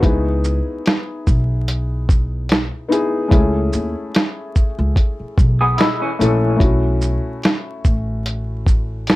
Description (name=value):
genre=lo-fi hip hop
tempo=73 BPM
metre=4/4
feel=swing 55% on 16ths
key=C# minor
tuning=A4 = 440 Hz
part: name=felt-muted upright piano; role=accompaniment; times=0.0-9.2 s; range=G#3 to A4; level=-22 LUFS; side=left 2 dB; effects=cassette tape, low-pass filter
part: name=upright bass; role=bass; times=0.0-9.2 s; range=A1 to D#2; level=-20 LUFS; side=equal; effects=none
part: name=lo-fi sampler-style drum kit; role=drums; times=0.0-9.2 s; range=hi-hat, kick drum, shaker, snare drum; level=-15 LUFS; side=equal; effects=none
part: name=electric guitar through a small old amp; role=second line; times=5.6-6.6 s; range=E3 to G#4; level=-21 LUFS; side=equal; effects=tremolo, low-pass filter, tape echo
room=light reverb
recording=vinyl crackle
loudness=-16 LUFS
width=side -18 dB against mid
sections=0.0-9.2 A section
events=none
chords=0.0 C#m7; 3.3 Amaj7; 6.6 B7sus4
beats=| 0.03 0.85 1.67 2.50 | 3.32 4.14 4.96 5.78 | 6.61 7.43 8.25 9.07